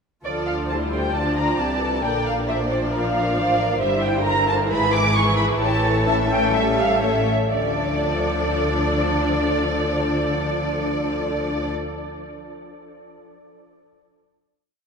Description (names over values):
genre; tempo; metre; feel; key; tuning
quick classical-period movement for symphony orchestra; 114-139 BPM; 4/4; rubato; D minor; A4 = 441 Hz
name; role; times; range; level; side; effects
warm studio violin section; melody; 0.2-11.7 s; D5 to D6; -24 LUFS; right 1 dB; none
warm studio cello section; bass; 0.2-11.7 s; G2 to D3; -28 LUFS; equal; none
warm studio double bass section; bass; 0.2-11.7 s; G1 to D2; -28 LUFS; equal; none
warm studio violin section; second line; 0.3-11.7 s; F4 to E5; -25 LUFS; left 1 dB; none
rich studio viola section; accompaniment; 0.3-11.7 s; D3 to F4; -25 LUFS; left 1 dB; none
room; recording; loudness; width
wet cathedral reverb, RT60 5.1 s; in a vast, echoing space; -19 LUFS; side -5 dB against mid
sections
0.3-7.5 theme; 7.5-11.4 final chord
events
slowing down 2.9-7.5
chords
0.3 Dm; 2.1 Bb; 3.8 Em7b5/G; 4.7 E/G#; 5.6 A7; 7.5 Dm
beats
| 0.27 0.71 1.16 1.62 | 2.06 2.50 2.94 3.38 | 3.82 4.26 4.71 5.16 | 5.61 6.07 6.54 7.02 | 7.54 8.02 8.51 8.99 | 9.47 9.95 10.43 10.91